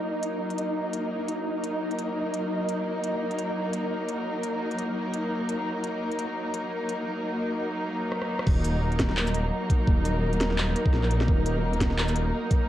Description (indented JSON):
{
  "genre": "half-time drum and bass",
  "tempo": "171 BPM",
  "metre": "4/4",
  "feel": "swing 57% on 16ths, half-time",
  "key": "Eb minor",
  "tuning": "A4 = 440 Hz",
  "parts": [
    { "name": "warm studio string section", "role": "sustained chords", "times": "0.0-12.7 s", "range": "Gb3 to Bb4", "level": "-29 LUFS", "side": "equal", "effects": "sidechain pumping, low-pass filter, cassette tape" },
    { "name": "flickering grainy texture", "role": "texture", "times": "0.0-12.7 s", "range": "Bb3 to Eb5", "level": "-33 LUFS", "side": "equal", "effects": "built-in reverb, cassette tape" },
    { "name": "industrial drum kit", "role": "drums", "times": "0.2-12.6 s", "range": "crash cymbal, handclaps, hi-hat, rim click, shaker, snare drum", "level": "-31 LUFS", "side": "equal", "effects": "cassette tape" },
    { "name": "dark detuned saw bass", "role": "bass", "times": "8.5-12.3 s", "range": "Eb1 to Bb1", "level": "-26 LUFS", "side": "equal", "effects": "none" },
    { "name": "electronic kick drum", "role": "drums", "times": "8.5-12.6 s", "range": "none", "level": "-23 LUFS", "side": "equal", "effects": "cassette tape" }
  ],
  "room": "light reverb",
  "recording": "home recording on cassette",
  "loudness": "-25 LUFS",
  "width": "side -13 dB against mid",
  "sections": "0.0-8.5 A section; 8.5-12.7 B section",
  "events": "drum fill 8.1-8.5; drop 8.5-12.7",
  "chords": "0.0 Ebm"
}